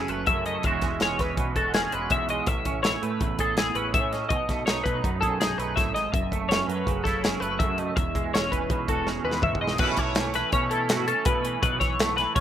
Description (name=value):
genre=math rock and midwest emo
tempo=164 BPM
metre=5/4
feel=straight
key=unclear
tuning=A4 = 440 Hz
part: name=twangy electric guitar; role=accompaniment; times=0.0-12.4 s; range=E2 to G#4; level=-29 LUFS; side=right 8 dB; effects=ensemble chorus
part: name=twelve-string electric guitar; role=arpeggios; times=0.0-12.4 s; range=F#4 to E5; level=-27 LUFS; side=left 4 dB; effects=analog chorus, analog delay
part: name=growling picked electric bass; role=bass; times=0.0-12.4 s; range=E1 to B2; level=-34 LUFS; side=equal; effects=overdrive
part: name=modern studio drum kit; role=drums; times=0.1-12.4 s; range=crash cymbal, hi-hat, kick drum, snare drum, toms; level=-27 LUFS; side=equal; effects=none
room=small room ambience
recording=rough home demo mix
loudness=-23 LUFS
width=side -10 dB against mid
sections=0.0-9.8 A section; 9.8-12.4 B section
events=drum fill 9.1-9.8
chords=0.0 F#m9; 0.6 E69; 2.5 Amaj9; 4.3 B13; 6.1 F#m7; 8.0 E69; 9.8 B9sus4